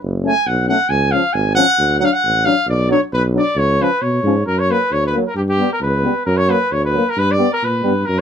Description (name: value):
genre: balkan folk, Balkan brass band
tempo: 134 BPM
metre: 2/4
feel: straight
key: C# phrygian dominant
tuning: A4 = 440 Hz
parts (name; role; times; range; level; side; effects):
- mellow tuba; bass; 0.0-8.2 s; F#1 to B2; -19 LUFS; right 1 dB; none
- bright trombone; accompaniment; 0.2-7.9 s; E#3 to A3; -22 LUFS; right 8 dB; none
- warm euphonium; accompaniment; 0.2-7.9 s; A#3 to D4; -20 LUFS; left 7 dB; none
- warm trumpet; melody; 0.3-8.2 s; G4 to G#5; -17 LUFS; equal; none
room: light reverb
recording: none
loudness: -14 LUFS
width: side -8 dB against mid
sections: 0.0-4.5 A section; 4.5-8.2 B section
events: trumpet solo 0.0-4.5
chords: 0.0 F#m; 0.9 C#; 1.8 D; 2.7 Bm; 3.6 C#; 4.5 F#; 5.4 G; 6.3 F#; 7.2 G